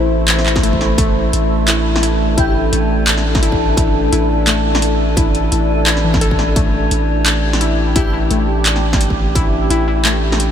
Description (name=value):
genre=half-time drum and bass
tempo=172 BPM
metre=4/4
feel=swing 57% on 16ths, half-time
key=unclear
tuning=A4 = 439 Hz
part: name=deep dark ambient pad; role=sustained chords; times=0.0-10.5 s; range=A3 to C5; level=-21 LUFS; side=equal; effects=chorus, built-in reverb, sidechain pumping
part: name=warbly dusty pluck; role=arpeggios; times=0.0-10.2 s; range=E3 to A4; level=-22 LUFS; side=left 5 dB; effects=chorus, tape echo
part: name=long sustained 808-style bass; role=bass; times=0.0-10.5 s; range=A1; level=-17 LUFS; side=equal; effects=tube saturation
part: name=drum and bass drum kit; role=drums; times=0.3-10.5 s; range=handclaps, hi-hat, snare drum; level=-19 LUFS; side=equal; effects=none
part: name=electronic kick drum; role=drums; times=0.6-9.4 s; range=none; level=-18 LUFS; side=equal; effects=distortion
part: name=metallic inharmonic drone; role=texture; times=1.6-10.5 s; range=D4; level=-23 LUFS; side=equal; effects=chorus, built-in reverb, phaser
part: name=airy dreamy lead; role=melody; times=2.4-2.5, 8.0-8.1 s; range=G4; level=-29 LUFS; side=equal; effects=none
room=moderate huge ambient reverb, RT60 7.9 s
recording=dreamy mix soaked in reverb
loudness=-12 LUFS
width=side -9 dB against mid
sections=0.0-10.5 A section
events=none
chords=0.0 Am